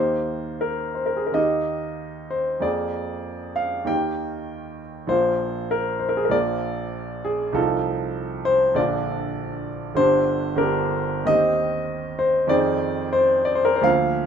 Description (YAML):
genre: classical, romantic character piece for solo piano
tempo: 97 BPM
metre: 4/4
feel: uneven beats, rubato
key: Eb major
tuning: A4 = 442 Hz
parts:
  - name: clear grand piano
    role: solo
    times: 0.0-14.3 s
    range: G1 to G5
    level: -20 LUFS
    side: equal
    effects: none
room: wet studio reverb, RT60 0.8 s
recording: none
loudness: -20 LUFS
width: side -7 dB against mid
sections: 0.0-14.3 A section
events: none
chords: 0.0 Eb; 2.6 Bb7/F; 3.9 Eb; 5.1 Bb; 7.6 F7/C; 8.8 Bb; 10.0 Gm; 11.3 Cm/Eb; 12.5 Fm7